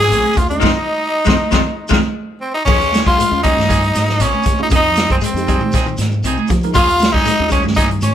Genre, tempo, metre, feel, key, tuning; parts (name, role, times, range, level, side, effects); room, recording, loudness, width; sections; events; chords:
afrobeat; 118 BPM; 4/4; straight; Eb mixolydian; A4 = 442 Hz
raspy tenor saxophone; melody; 0.0-8.1 s; C4 to Ab4; -16 LUFS; left 1 dB
growling trumpet; second line; 0.0-8.1 s; C5 to Ab5; -25 LUFS; right 2 dB
fingered electric bass; bass; 0.0-8.1 s; Bb1 to F3; -21 LUFS; equal
vintage drum kit; drums; 0.0-8.1 s; crash cymbal, hi-hat, kick drum, snare drum; -18 LUFS; equal
clean electric guitar; arpeggios; 0.1-8.1 s; C3 to Ab3; -23 LUFS; left 8 dB; spring reverb
clean electric guitar; stabs; 0.1-8.1 s; F3 to Ab4; -25 LUFS; right 5 dB
claves; percussion; 0.1-8.1 s; -36 LUFS; left 1 dB
congas; percussion; 0.1-8.1 s; -24 LUFS; right 5 dB
shekere; percussion; 0.1-8.1 s; -28 LUFS; left 2 dB
tine electric piano; accompaniment; 0.4-7.7 s; Ab3 to Bb4; -24 LUFS; right 1 dB; overdrive, medium stereo tremolo
moderate small room reverb, RT60 0.5 s; band playing live in one room; -12 LUFS; side -10 dB against mid
0.0-2.7 A section; 2.7-8.1 A section
band accent 0.6-2.7
0.0 Eb9sus4; 0.6 Fm7; 2.7 Eb9sus4; 4.7 Fm7; 6.7 Eb9sus4